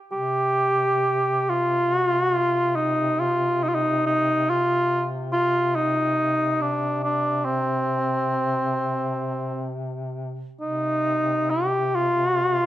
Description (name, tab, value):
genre	caucasian folk, Caucasian lament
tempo	63-73 BPM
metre	3/4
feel	rubato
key	C minor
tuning	A4 = 439 Hz
part	dark cor anglais	melody	0.1-12.7 s	C4 to G4	-21 LUFS	equal	none
part	mellow duduk	drone	0.1-12.7 s	C3	-30 LUFS	left 1 dB	none
room	light reverb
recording	dark, warm production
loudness	-21 LUFS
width	side -13 dB against mid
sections	0.0-10.6 A section; 10.6-12.7 B section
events	none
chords	none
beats	| 0.12 1.03 1.92 | 2.77 3.62 4.48 | 5.32 6.17 7.01 | 7.87 8.77 9.70 | 10.62 11.52 12.41